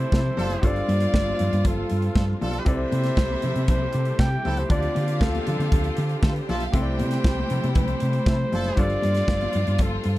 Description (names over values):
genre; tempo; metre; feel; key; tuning
disco; 118 BPM; 4/4; straight; C major; A4 = 440 Hz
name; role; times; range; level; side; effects
breathy flugelhorn; melody; 0.0-10.2 s; A4 to G5; -29 LUFS; equal; none
warm symphonic violin section; second line; 0.0-10.2 s; A3 to G5; -36 LUFS; equal; none
bright baby grand piano; accompaniment; 0.0-10.2 s; C3 to D5; -32 LUFS; left 2 dB; none
rich studio string section; sustained chords; 0.0-10.2 s; C3 to G4; -32 LUFS; right 1 dB; none
hollow-body short-scale fingered electric bass; bass; 0.0-10.2 s; F#1 to D3; -25 LUFS; equal; none
warm horn section; stabs; 0.1-8.8 s; A3 to A4; -32 LUFS; right 1 dB; none
modern studio drum kit; drums; 0.1-10.2 s; hi-hat, kick drum, snare drum; -23 LUFS; equal; none
congas; percussion; 0.4-10.2 s; none; -33 LUFS; left 4 dB; none
room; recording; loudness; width
little or no reverb; dark, warm production; -20 LUFS; side -16 dB against mid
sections
0.0-10.2 A section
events
none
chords
0.0 C6; 0.6 G9sus4; 2.7 C6; 4.7 Dm7; 6.7 C6; 8.8 G9sus4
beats
0.12 | 0.63 1.14 1.65 2.16 | 2.67 3.17 3.68 4.19 | 4.70 5.21 5.72 6.23 | 6.74 7.25 7.76 8.27 | 8.77 9.28 9.79